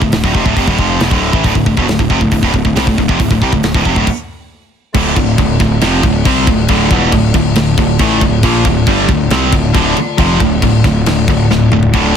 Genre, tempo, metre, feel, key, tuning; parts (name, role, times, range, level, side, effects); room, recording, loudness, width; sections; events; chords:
heavy metal; 137 BPM; 4/4; straight; D minor; A4 = 438 Hz
high-gain distorted guitar; riff; 0.0-12.2 s; D2 to C4; -15 LUFS; right 10 dB; distortion
tight distorted guitar; riff; 0.0-12.2 s; D2 to C4; -16 LUFS; left 10 dB; distortion
fuzz picked electric bass; bass; 0.0-12.1 s; D1 to C2; -17 LUFS; equal; overdrive
tight metal drum kit; drums; 0.0-12.0 s; crash cymbal, hi-hat, kick drum, snare drum, toms; -15 LUFS; equal
chamber organ, stopped flute; sustained chords; 4.9-12.2 s; D3 to D5; -23 LUFS; left 4 dB
fuzz guitar; riff; 4.9-12.2 s; D2 to C4; -18 LUFS; equal; distortion
small room ambience; dense, heavily limited modern master; -9 LUFS; side -8 dB against mid
0.0-5.0 A section; 5.0-12.2 B section
stop 4.1-5.0; half time 5.0-12.2; drum fill 11.5-11.9
0.0 Dm